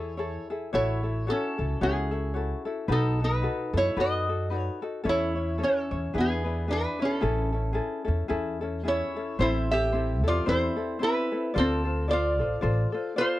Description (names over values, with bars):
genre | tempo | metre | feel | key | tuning
Hawaiian | 111 BPM | 4/4 | swing 58% on 8ths | A major, A minor from 9.4 s | A4 = 440 Hz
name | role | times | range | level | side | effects
lap resonator guitar | melody | 0.0-13.4 s | B3 to E5 | -28 LUFS | right 1 dB | none
ukulele | accompaniment | 0.0-13.4 s | C4 to D5 | -31 LUFS | left 4 dB | none
upright bass | bass | 0.0-12.8 s | A1 to F#2 | -29 LUFS | equal | none
room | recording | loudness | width
light reverb | dry, close 1970s-style studio recording | -25 LUFS | side -15 dB against mid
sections
0.0-9.4 A section; 9.4-13.4 B section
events
none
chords
0.0 Amaj7; 0.7 F#m7/A; 2.9 B7; 5.1 A/E; 6.1 E7; 7.2 Amaj7; 9.4 Am; 11.5 Dm7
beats
0.19 | 0.73 1.27 1.81 2.35 | 2.89 3.44 3.98 4.52 | 5.06 5.60 6.14 6.68 | 7.22 7.76 8.30 8.85 | 9.39 9.93 10.47 11.01 | 11.55 12.09 12.63 13.17